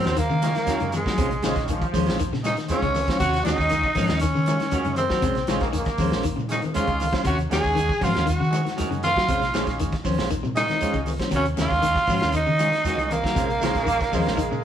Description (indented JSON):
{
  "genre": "afrobeat",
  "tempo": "118 BPM",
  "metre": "4/4",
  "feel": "straight",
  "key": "Eb dorian",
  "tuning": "A4 = 440 Hz",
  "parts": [
    { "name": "growling tenor saxophone", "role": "melody", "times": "0.0-14.6 s", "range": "Ab3 to Ab4", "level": "-25 LUFS", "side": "right 1 dB", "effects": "none" },
    { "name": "breathy trumpet", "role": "second line", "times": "0.0-14.6 s", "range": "Ab4 to Ab5", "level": "-29 LUFS", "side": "right 2 dB", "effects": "none" },
    { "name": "electric guitar at the edge of break-up", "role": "arpeggios", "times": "0.0-14.6 s", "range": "C3 to Gb3", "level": "-30 LUFS", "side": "left 5 dB", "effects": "tremolo" },
    { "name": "electric guitar through a small old amp", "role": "stabs", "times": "0.0-14.6 s", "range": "Ab3 to C5", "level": "-30 LUFS", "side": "right 3 dB", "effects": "none" },
    { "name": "hollow-body short-scale fingered electric bass", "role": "bass", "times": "0.0-14.6 s", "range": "Bb1 to Eb3", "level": "-28 LUFS", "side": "equal", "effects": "none" },
    { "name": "crunchy breakbeat drum kit", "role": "drums", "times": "0.0-14.5 s", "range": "hi-hat, kick drum, snare drum", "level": "-30 LUFS", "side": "equal", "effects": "none" },
    { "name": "congas", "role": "percussion", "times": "0.1-14.5 s", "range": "none", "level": "-32 LUFS", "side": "left 4 dB", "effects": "none" },
    { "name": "shekere", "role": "percussion", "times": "0.1-14.6 s", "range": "none", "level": "-34 LUFS", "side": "equal", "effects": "none" },
    { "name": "combo organ", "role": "accompaniment", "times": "0.4-14.0 s", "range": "Eb3 to Gb4", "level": "-34 LUFS", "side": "right 2 dB", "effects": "none" },
    { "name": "brilliant trombone section", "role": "second line", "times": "1.4-2.3, 5.5-6.3, 13.6-14.6 s", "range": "F3 to Bb3", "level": "-30 LUFS", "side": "right 1 dB", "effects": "none" }
  ],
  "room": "moderate stone room reverb, RT60 1.1 s",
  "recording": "band playing live in one room",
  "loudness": "-20 LUFS",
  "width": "side -9 dB against mid",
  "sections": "0.0-14.6 A section",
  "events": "none",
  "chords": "0.0 Ebm7; 1.2 Bbm9; 3.2 Ebm7; 5.2 Bbm9; 7.3 Ebm7; 9.3 Bbm9; 11.3 Ebm7; 13.4 Bbm9",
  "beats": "0.17 0.68 | 1.18 1.69 2.19 2.70 | 3.21 3.71 4.22 4.72 | 5.23 5.74 6.24 6.75 | 7.25 7.76 8.27 8.78 | 9.29 9.79 10.30 10.81 | 11.32 11.83 12.34 12.85 | 13.36 13.87 14.38"
}